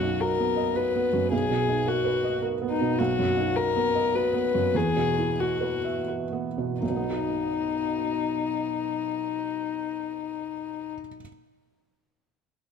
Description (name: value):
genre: neoclassical piano and strings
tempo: 80-109 BPM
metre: 3/4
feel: rubato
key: B major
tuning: A4 = 440 Hz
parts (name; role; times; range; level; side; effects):
- dark violin; melody; 0.0-10.9 s; D#4 to B4; -26 LUFS; left 7 dB; none
- felt-muted upright piano; accompaniment; 0.0-11.3 s; B1 to E5; -28 LUFS; right 5 dB; none
room: moderate scoring stage reverb, RT60 1.5 s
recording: close, detailed microphones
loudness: -24 LUFS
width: side -6 dB against mid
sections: 0.0-6.8 A section; 6.8-11.2 B section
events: slowing down 2.1-6.8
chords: 0.0 B; 1.3 G#madd9/B; 3.0 B; 4.7 Eadd9; 6.8 B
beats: 0.20 0.76 | 1.32 1.87 2.43 | 2.99 3.56 4.14 | 4.74 5.39 6.08 | 6.82 7.54 8.27 | 9.00 9.73 10.46